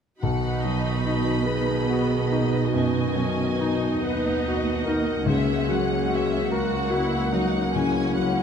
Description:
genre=classical, romantic movement for piano and orchestra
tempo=48 BPM (dotted quarters)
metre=12/8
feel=rubato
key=B major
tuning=A4 = 441 Hz
part: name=clear concert grand piano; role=melody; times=0.2-8.4 s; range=B1 to B4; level=-26 LUFS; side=left 3 dB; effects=none
part: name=rich symphonic violin section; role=melody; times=0.2-8.4 s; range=F#5 to B5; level=-36 LUFS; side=equal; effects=none
part: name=clear symphonic violin section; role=second line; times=0.2-8.4 s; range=D#5 to G#5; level=-32 LUFS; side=left 1 dB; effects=none
part: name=dark clarinet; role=second line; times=0.2-8.4 s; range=E4 to B4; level=-30 LUFS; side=left 3 dB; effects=none
part: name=clear studio viola section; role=accompaniment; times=0.2-8.4 s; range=B3 to F#4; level=-32 LUFS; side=right 3 dB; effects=none
part: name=mellow French horn section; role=sustained chords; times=0.2-8.4 s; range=D#3 to B3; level=-31 LUFS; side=left 2 dB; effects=none
part: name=rich studio cello section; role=bass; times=0.2-8.4 s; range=C#2 to B2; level=-28 LUFS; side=right 7 dB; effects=none
room=moderate scoring stage reverb, RT60 1.6 s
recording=close, detailed microphones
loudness=-21 LUFS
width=side -7 dB against mid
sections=0.2-8.4 A section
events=none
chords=0.2 B; 5.3 F#7/C#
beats=| 0.21 1.47 2.71 4.03 | 5.27 6.51 7.72

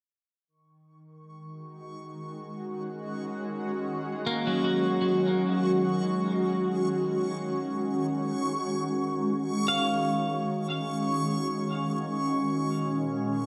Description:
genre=ambient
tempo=free time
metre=none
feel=none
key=Eb minor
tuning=A4 = 440 Hz
part: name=shimmering ambient pad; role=sustained chords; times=1.5-13.5 s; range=Bb2 to Gb4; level=-31 LUFS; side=equal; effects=chorus, built-in reverb
part: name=analog drone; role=drone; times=3.6-13.5 s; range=Eb3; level=-48 LUFS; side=equal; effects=none
part: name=backwards swelling texture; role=texture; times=1.3-13.5 s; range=Db6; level=-39 LUFS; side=equal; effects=built-in reverb
part: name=twelve-string electric guitar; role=arpeggios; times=4.3-12.9 s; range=Gb3 to F5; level=-32 LUFS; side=equal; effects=diffuse ambient delay
room=wet concert hall reverb, RT60 2.3 s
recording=none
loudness=-28 LUFS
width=mono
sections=0.5-13.5 A section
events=none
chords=0.5 Ebm7; 8.5 Gb5; 12.6 Bbm7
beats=free time

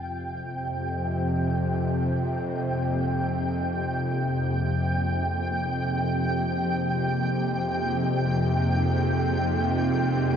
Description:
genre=dark ambient drone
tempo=free time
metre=none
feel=none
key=F minor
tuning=A4 = 440 Hz
part: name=granular cloud pad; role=sustained chords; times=0.0-10.4 s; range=F3 to Ab4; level=-36 LUFS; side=equal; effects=built-in reverb
part: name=bowed-like drone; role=drone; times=0.0-10.4 s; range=F2 to C3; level=-25 LUFS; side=equal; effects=built-in reverb
part: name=flickering grainy texture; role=texture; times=0.0-10.4 s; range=G5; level=-31 LUFS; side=equal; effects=built-in reverb
room=wet huge ambient reverb, RT60 7.4 s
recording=dark, warm production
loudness=-24 LUFS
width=side -8 dB against mid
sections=0.0-10.4 A section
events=fade-in on ambient pad 0.0-10.4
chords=0.0 Fm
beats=free time

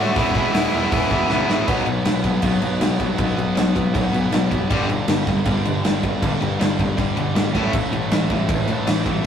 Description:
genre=punk rock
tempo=158 BPM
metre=4/4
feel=straight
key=unclear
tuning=A4 = 440 Hz
part: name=biting overdriven guitar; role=riff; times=0.0-9.2 s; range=G2 to F#4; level=-24 LUFS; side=left 4 dB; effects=none
part: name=raw garage guitar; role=riff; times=0.0-9.3 s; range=G2 to F#4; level=-26 LUFS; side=right 3 dB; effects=overdrive
part: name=tight distorted guitar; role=riff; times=0.0-9.3 s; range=E2 to D4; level=-27 LUFS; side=right 1 dB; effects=distortion
part: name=fuzz picked electric bass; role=bass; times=0.0-9.2 s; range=E1 to C#2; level=-26 LUFS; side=equal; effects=overdrive
part: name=big rock drum kit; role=drums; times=0.2-9.2 s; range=crash cymbal, hi-hat, kick drum, snare drum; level=-21 LUFS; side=equal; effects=none
room=light reverb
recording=rough rehearsal-room recording, tube saturation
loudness=-17 LUFS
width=side -8 dB against mid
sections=0.0-1.7 A section; 1.7-9.3 B section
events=drum fill 1.3-1.7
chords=0.2 E; 1.7 B5; 4.7 G5; 7.5 A5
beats=| 0.17 0.54 0.92 1.30 | 1.68 2.06 2.43 2.81 | 3.19 3.57 3.95 4.33 | 4.71 5.09 5.46 5.84 | 6.22 6.60 6.98 7.36 | 7.74 8.12 8.50 8.88 | 9.26

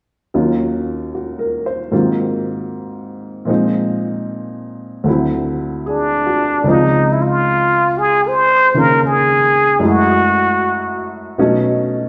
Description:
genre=jazz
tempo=76 BPM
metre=4/4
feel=swing 66% on 8ths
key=Db major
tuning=A4 = 439 Hz
part: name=warm upright piano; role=accompaniment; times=0.3-12.1 s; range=Db2 to C5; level=-19 LUFS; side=equal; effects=none
part: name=trumpet with plunger mute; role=melody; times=5.9-11.1 s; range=D4 to C5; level=-16 LUFS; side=equal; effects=none
room=wet recital hall reverb, RT60 1.9 s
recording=recorded in a church or concert hall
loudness=-16 LUFS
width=mono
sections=0.3-6.6 A section; 6.6-12.1 B section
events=none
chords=0.3 Ebm9; 1.9 Ab13; 3.5 Bb9sus4; 5.1 D9; 6.6 Dbmaj9; 9.8 Gbm9; 11.4 Cb9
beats=| 0.34 1.13 1.92 2.70 | 3.49 4.28 5.06 5.86 | 6.65 7.44 8.23 9.02 | 9.80 10.59 11.37

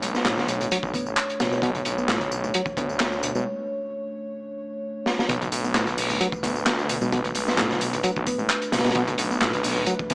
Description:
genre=breakbeat, breaks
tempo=131 BPM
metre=4/4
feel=swing 53% on 16ths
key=B minor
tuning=A4 = 439 Hz
part: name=dark analog pad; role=sustained chords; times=0.0-10.1 s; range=A3 to C#5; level=-33 LUFS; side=equal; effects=chorus, sidechain pumping
part: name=detuned saw bass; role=bass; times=0.0-10.1 s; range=F#1 to D2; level=-31 LUFS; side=equal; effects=none
part: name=crunchy breakbeat drum kit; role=drums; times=0.0-10.1 s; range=hi-hat, kick drum, snare drum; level=-29 LUFS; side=equal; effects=none
part: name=garage drum kit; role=drums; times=0.0-10.1 s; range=handclaps, hi-hat, tambourine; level=-32 LUFS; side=equal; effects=none
part: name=congas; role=percussion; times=0.0-9.9 s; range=none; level=-40 LUFS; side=equal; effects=none
part: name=reed electric piano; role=riff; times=0.1-10.1 s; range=A2 to B3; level=-31 LUFS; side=equal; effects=overdrive, vintage 12-bit sampler grit, dub echo
room=light reverb, small room reverb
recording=small speaker sound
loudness=-25 LUFS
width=mono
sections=0.0-5.3 A section; 5.3-10.1 B section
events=break 3.5-5.3; drum fill 5.1; drop 5.3-10.1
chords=0.0 Bm7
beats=0.25 0.71 1.17 | 1.63 2.09 2.54 3.00 | 3.46 3.92 4.38 4.83 | 5.29 5.75 6.21 6.67 | 7.12 7.58 8.04 8.50 | 8.96 9.41 9.87

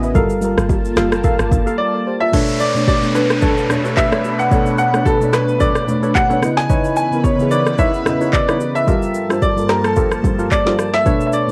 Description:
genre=amapiano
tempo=110 BPM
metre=4/4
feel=swing 55% on 16ths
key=unclear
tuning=A4 = 440 Hz
part: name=mellow FM electric piano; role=accompaniment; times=0.0-11.5 s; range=B2 to B5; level=-23 LUFS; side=equal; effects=chorus, cassette tape
part: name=lush unison pad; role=sustained chords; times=0.0-11.5 s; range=G2 to A5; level=-26 LUFS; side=equal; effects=chorus, phaser, sidechain pumping, cassette tape
part: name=deep log drum bass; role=bass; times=0.0-1.7 s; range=F#1 to A1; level=-25 LUFS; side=equal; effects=none
part: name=afro-pop drum kit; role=drums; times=0.0-11.5 s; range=crash cymbal, handclaps, kick drum, rim click, shaker, snare drum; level=-21 LUFS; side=equal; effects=overdrive
part: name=percussive organ stab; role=stabs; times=0.1-11.5 s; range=D4 to F5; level=-26 LUFS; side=equal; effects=chorus, cassette tape, analog delay
part: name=congas and bongos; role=percussion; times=0.2-11.2 s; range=none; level=-32 LUFS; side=equal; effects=none
part: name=clear grand piano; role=melody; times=1.8-11.5 s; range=A4 to G#5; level=-21 LUFS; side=equal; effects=cassette tape
part: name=downlifter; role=sound effects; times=2.3-6.7 s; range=none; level=-30 LUFS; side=equal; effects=none
room=light reverb, digital ambience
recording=home recording on cassette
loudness=-16 LUFS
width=mono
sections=0.0-2.3 A section; 2.3-11.5 B section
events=drop 0.0-2.3; silent gap 1.8-2.3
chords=0.2 Gm9; 2.3 Bm9; 6.4 C#m9; 8.9 Gm9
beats=| 0.15 0.70 1.24 1.79 | 2.33 2.88 3.42 3.97 | 4.51 5.06 5.61 6.15 | 6.70 7.24 7.79 8.33 | 8.88 9.42 9.97 10.52 | 11.06

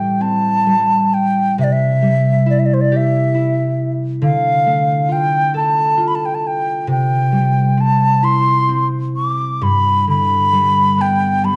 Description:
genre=celtic folk, Celtic slow air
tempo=45 BPM (dotted quarters)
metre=6/8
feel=rubato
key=unclear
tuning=A4 = 440 Hz
part: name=wooden flute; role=melody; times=0.0-11.6 s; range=C5 to D6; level=-18 LUFS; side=equal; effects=none
part: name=concert harp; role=accompaniment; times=0.0-11.6 s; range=G2 to A4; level=-19 LUFS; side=equal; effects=none
room=wet recital hall reverb, RT60 1.3 s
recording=dark, warm production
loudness=-16 LUFS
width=mono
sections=0.0-11.6 A section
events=none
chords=0.0 Am7; 1.6 C; 4.2 Dm; 6.9 C; 9.6 G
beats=0.20 | 1.57 2.91 | 4.23 5.54 | 6.88 8.23 | 9.61 10.98

